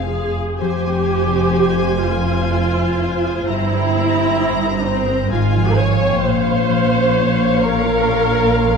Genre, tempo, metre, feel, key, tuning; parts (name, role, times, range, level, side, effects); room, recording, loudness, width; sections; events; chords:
classical, slow romantic movement for symphony orchestra; 64 BPM; 3/4; rubato; F minor; A4 = 440 Hz
rich symphonic violin section; melody; 0.0-8.8 s; F5 to Bb5; -28 LUFS; left 6 dB
warm symphonic violin section; second line; 0.0-8.8 s; Ab4 to F5; -26 LUFS; left 3 dB
warm symphonic viola section; accompaniment; 0.0-8.8 s; C4 to Db5; -19 LUFS; right 2 dB
concert harp; arpeggios; 0.0-8.8 s; G2 to Ab5; -23 LUFS; left 11 dB
rich symphonic double bass section; bass; 0.0-8.8 s; F1 to Bb1; -22 LUFS; right 3 dB
warm symphonic cello section; bass; 0.0-8.8 s; F2 to Bb2; -22 LUFS; right 5 dB
moderate concert hall reverb, RT60 2.1 s; dark, warm production; -15 LUFS; side -5 dB against mid
0.6-8.8 A section
0.0 Fm; 3.5 C7/G; 5.3 Fm/Ab; 6.2 Bbm